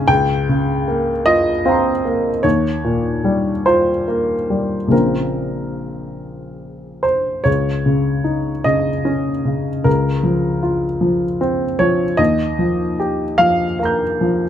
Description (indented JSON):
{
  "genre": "neoclassical minimalist piano",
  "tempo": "46-52 BPM (dotted quarters)",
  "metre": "6/8",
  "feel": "rubato",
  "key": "Bb dorian",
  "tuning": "A4 = 440 Hz",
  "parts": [
    { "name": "warm baby grand piano", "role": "solo", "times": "0.0-14.5 s", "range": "Bb1 to G6", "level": "-15 LUFS", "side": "equal", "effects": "none" }
  ],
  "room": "moderate studio reverb, RT60 0.7 s",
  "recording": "none",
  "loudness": "-15 LUFS",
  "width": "side -10 dB against mid",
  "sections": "0.0-7.5 A section; 7.5-14.5 B section",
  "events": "none",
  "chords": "0.1 Bbmadd9/Db; 2.4 Ebadd9; 4.9 Bbmadd9; 7.5 Dbsus2; 9.9 Bbmadd9/Db; 12.2 Ebadd9"
}